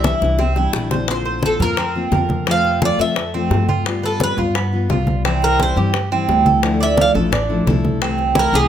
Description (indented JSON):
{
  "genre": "latin, Cuban son and guajira",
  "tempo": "173 BPM",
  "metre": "4/4",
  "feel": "straight",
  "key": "unclear",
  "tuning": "A4 = 438 Hz",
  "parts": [
    { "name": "Cuban tres", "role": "melody", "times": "0.0-8.7 s", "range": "Ab4 to F5", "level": "-19 LUFS", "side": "equal", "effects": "none" },
    { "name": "fingerpicked steel-string acoustic guitar", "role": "accompaniment", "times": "0.0-8.7 s", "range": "C3 to F4", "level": "-22 LUFS", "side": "left 4 dB", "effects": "none" },
    { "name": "Cuban tres", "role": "arpeggios", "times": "0.0-8.7 s", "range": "B3 to D5", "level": "-21 LUFS", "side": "right 7 dB", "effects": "none" },
    { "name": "upright bass", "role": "bass", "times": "0.0-8.7 s", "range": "A1 to G2", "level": "-21 LUFS", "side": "equal", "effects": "none" },
    { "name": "bongos", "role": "percussion", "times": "0.0-8.7 s", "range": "none", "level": "-26 LUFS", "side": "left 8 dB", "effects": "none" },
    { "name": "congas", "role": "percussion", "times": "0.0-8.7 s", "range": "none", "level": "-23 LUFS", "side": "equal", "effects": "none" }
  ],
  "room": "light reverb",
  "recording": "close, detailed microphones",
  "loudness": "-15 LUFS",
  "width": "side -9 dB against mid",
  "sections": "0.0-1.1 A section; 1.1-8.7 B section",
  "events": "drum fill 0.0-1.1; Cuban tres solo 1.1-8.7",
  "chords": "0.0 Cadd9; 1.1 Bbadd9; 2.5 F; 3.9 G7; 5.2 C; 6.6 Dmadd9; 8.0 C6"
}